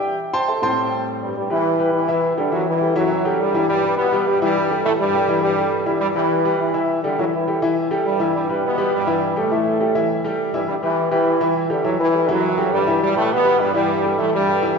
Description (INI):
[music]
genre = latin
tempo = 206 BPM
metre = 4/4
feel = straight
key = E minor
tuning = A4 = 441 Hz
[part]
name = clear grand piano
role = accompaniment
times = 0.0-14.8 s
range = A2 to C6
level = -21 LUFS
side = left 1 dB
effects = none
[part]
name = brilliant trombone section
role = melody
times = 1.2-14.7 s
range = F#2 to E4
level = -19 LUFS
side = equal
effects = none
[sound]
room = wet scoring stage reverb, RT60 2.1 s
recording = recorded in a church or concert hall, nothing above 7.8 kHz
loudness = -17 LUFS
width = side -5 dB against mid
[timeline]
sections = 0.0-1.4 A section; 1.4-10.7 B section; 10.7-14.8 B section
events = grand piano solo 0.0-1.4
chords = 0.2 Am7; 1.4 Em7; 2.5 A5; 3.7 Em; 4.9 A5; 6.0 Em7; 7.2 A5; 8.3 Em; 9.5 A5; 10.7 Em7; 11.8 A5; 13.0 Em; 14.2 A5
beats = | 0.20 0.49 0.78 1.07 | 1.36 1.65 1.94 2.23 | 2.52 2.81 3.11 3.40 | 3.69 3.98 4.27 4.56 | 4.85 5.14 5.43 5.72 | 6.01 6.31 6.60 6.89 | 7.18 7.47 7.76 8.05 | 8.35 8.64 8.93 9.22 | 9.51 9.80 10.10 10.39 | 10.68 10.97 11.26 11.55 | 11.85 12.14 12.43 12.72 | 13.02 13.31 13.60 13.89 | 14.18 14.48 14.77